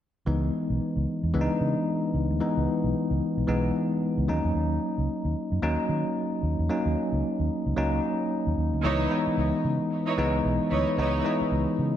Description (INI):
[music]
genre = R&B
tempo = 112 BPM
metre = 4/4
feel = swing 60% on 16ths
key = C# dorian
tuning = A4 = 439 Hz
[part]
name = bell-like tine electric piano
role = accompaniment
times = 0.3-12.0 s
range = E3 to D#4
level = -26 LUFS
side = left 1 dB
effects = fast stereo tremolo
[part]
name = vintage muted fingered electric bass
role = bass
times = 0.3-11.9 s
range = B1 to D#3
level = -28 LUFS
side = right 1 dB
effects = none
[part]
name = warm studio string section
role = stabs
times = 8.8-11.2 s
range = D#4 to C#5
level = -30 LUFS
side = right 3 dB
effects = ping-pong delay
[sound]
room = wet lush hall reverb, RT60 1.8 s, small room ambience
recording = big arena sound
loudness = -24 LUFS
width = side -10 dB against mid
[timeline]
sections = 0.3-8.8 A section; 8.8-12.0 B section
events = none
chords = 0.3 C#m9; 4.3 D#m7; 8.8 C#m9